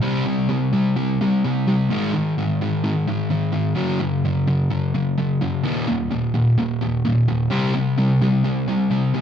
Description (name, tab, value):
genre	rock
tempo	128 BPM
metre	4/4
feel	straight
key	unclear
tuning	A4 = 440 Hz
part	fuzz guitar	solo	0.0-9.2 s	Eb2 to C4	-18 LUFS	equal	distortion, analog delay
room	wet small room reverb, RT60 0.5 s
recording	none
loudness	-18 LUFS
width	side -8 dB against mid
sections	0.0-9.2 A section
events	none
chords	0.0 C5; 1.9 Ab5; 3.8 Gb5; 5.7 Eb5; 7.5 C5